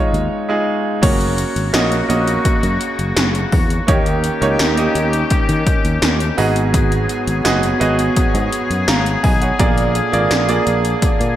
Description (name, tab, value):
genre	1980s-style pop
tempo	84 BPM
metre	4/4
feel	straight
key	unclear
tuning	A4 = 440 Hz
part	clear concert grand piano	accompaniment	0.0-11.4 s	Ab2 to Bb5	-18 LUFS	right 3 dB	none
part	sustaining fretless electric bass	bass	0.1-11.3 s	Gb1 to Eb3	-20 LUFS	equal	none
part	80s electronic pad drums	drums	0.1-11.4 s	crash cymbal, hi-hat, kick drum, snare drum, tambourine	-18 LUFS	equal	gated reverb
part	clear woodwind section	sustained chords	1.0-11.4 s	Db3 to Ab4	-22 LUFS	left 4 dB	none
room	moderate plate reverb, RT60 2.5 s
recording	bright 1980s-style digital production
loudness	-14 LUFS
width	side -12 dB against mid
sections	0.0-1.0 A section; 1.0-11.4 B section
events	break 0.3-1.0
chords	0.0 Dbadd9; 1.0 Gb; 3.9 Eb7; 6.4 Abm7; 9.6 Bb7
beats	0.31 | 1.03 1.74 2.46 3.17 | 3.88 4.60 5.31 6.03 | 6.74 7.46 8.17 8.88 | 9.60 10.31 11.03